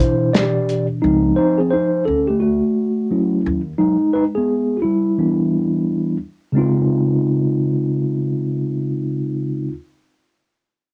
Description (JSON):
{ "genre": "hip hop, jazz-hop", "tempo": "87 BPM", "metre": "4/4", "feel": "swing 63% on 16ths", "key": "unclear", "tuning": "A4 = 440 Hz", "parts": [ { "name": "mellow tine electric piano", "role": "accompaniment", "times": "0.0-9.7 s", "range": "B2 to D5", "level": "-19 LUFS", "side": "equal", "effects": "cassette tape" }, { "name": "cloth-damped thuddy drum kit", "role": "drums", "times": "0.0-0.9 s", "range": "hi-hat, snare drum", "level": "-20 LUFS", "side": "equal", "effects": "cassette tape" }, { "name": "upright bass", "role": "bass", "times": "1.0-3.7 s", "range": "Db2 to Eb2", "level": "-27 LUFS", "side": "equal", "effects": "none" } ], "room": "wet booth ambience, RT60 0.3 s", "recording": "home recording on cassette", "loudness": "-19 LUFS", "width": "mono", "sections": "0.0-6.5 A section; 6.5-9.3 B section", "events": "tine electric piano solo 0.0-6.5", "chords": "0.0 Cmaj9; 1.0 Dbmaj9; 2.1 Dmaj9; 3.8 Gb13sus4; 5.2 Em7; 6.5 Dbmaj9" }